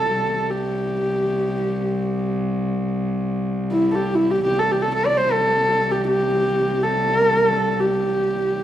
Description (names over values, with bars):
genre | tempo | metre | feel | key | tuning
mongolian traditional, Mongolian folk | free time | none | none | C gong mode | A4 = 441 Hz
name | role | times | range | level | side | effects
warm horsehead fiddle | melody | 0.0-8.6 s | E4 to D5 | -19 LUFS | right 1 dB | none
rich cello | drone | 0.0-8.6 s | C2 | -24 LUFS | left 2 dB | none
room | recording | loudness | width
moderate recital hall reverb, RT60 1.5 s | dark, warm production | -18 LUFS | side -11 dB against mid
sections
0.0-8.6 A section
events
none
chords
none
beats
free time